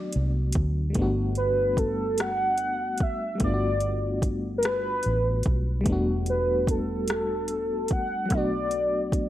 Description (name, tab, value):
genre	slow six-eight R&B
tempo	49 BPM (dotted quarters)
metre	6/8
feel	straight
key	G major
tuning	A4 = 445 Hz
part	warm velvety synth lead	melody	0.0-9.3 s	A4 to F#5	-27 LUFS	right 1 dB	chorus, slapback echo
part	FM electric piano with tremolo	accompaniment	0.0-9.3 s	F#3 to F#4	-30 LUFS	left 2 dB	none
part	vintage muted fingered electric bass	bass	0.0-9.3 s	E1 to D2	-29 LUFS	equal	none
part	smooth R&B drum kit	drums	0.1-9.3 s	hi-hat, kick drum, rim click	-28 LUFS	equal	overdrive
room	light reverb, digital ambience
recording	none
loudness	-23 LUFS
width	side -13 dB against mid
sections	1.0-9.3 A section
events	none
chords	0.0 Bm7; 1.0 Gmaj9; 5.9 Em11; 8.3 Bm7